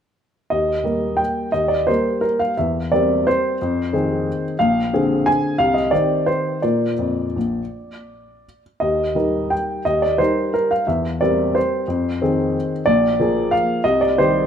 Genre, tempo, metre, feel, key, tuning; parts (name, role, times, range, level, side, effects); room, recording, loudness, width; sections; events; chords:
classical, piano waltz; 160-194 BPM; 3/4; rubato; Eb major; A4 = 440 Hz
warm upright piano; solo; 0.5-14.5 s; Bb1 to Ab5; -17 LUFS; equal
moderate recital hall reverb, RT60 1.7 s; close, detailed microphones; -17 LUFS; side -8 dB against mid
0.5-14.5 A section
0.5 Eb; 2.6 C7/E; 3.6 Fm7; 4.6 Bb9; 5.6 Cm; 6.6 Bb; 8.8 Eb; 10.9 C7/E; 11.9 Fm7; 12.9 Bb7; 13.8 Cm